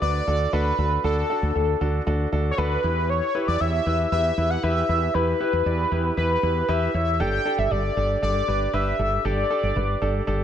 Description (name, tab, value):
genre	synth-pop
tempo	117 BPM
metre	4/4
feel	straight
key	unclear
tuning	A4 = 440 Hz
part	octave-doubled lead	melody	0.0-10.3 s	A4 to G5	-24 LUFS	left 1 dB	chorus, phaser, slapback echo
part	warm concert grand piano	accompaniment	0.0-10.4 s	D4 to D5	-28 LUFS	right 1 dB	none
part	woody fretless electric bass	bass	0.0-10.4 s	G1 to E2	-24 LUFS	equal	ensemble chorus
room	light reverb, small room ambience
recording	none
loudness	-20 LUFS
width	side -9 dB against mid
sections	0.0-10.4 A section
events	none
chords	0.0 D; 2.8 Em; 7.2 Gsus2